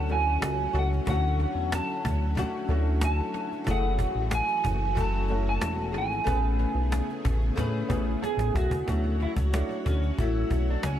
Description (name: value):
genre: indie pop, bedroom pop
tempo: 92 BPM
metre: 4/4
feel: straight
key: D lydian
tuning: A4 = 444 Hz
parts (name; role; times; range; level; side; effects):
- electric guitar through a small old amp; melody; 0.0-11.0 s; C#4 to A5; -31 LUFS; right 2 dB; analog chorus, tape echo
- flamenco guitar; accompaniment; 0.0-11.0 s; D3 to B4; -34 LUFS; left 5 dB; analog chorus, vibrato effect, tape echo
- warm upright piano; accompaniment; 0.0-11.0 s; A3 to G#5; -37 LUFS; right 3 dB; cassette tape, tape echo
- string machine, violas; sustained chords; 0.0-11.0 s; C#3 to F#5; -38 LUFS; left 1 dB; ensemble chorus
- chorused synth bass; bass; 0.0-11.0 s; E1 to A2; -27 LUFS; equal; none
- cajon; drums; 0.1-11.0 s; none; -33 LUFS; equal; tape echo
room: small room ambience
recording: echo-heavy mix, lossy compression artefacts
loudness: -24 LUFS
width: side -11 dB against mid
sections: 0.0-8.9 A section; 8.9-11.0 B section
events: upright piano fill 7.9-8.9; drum fill 8.2-8.9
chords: 0.0 Dmaj7; 3.7 F#m9; 6.3 Amaj9; 8.9 Dmaj7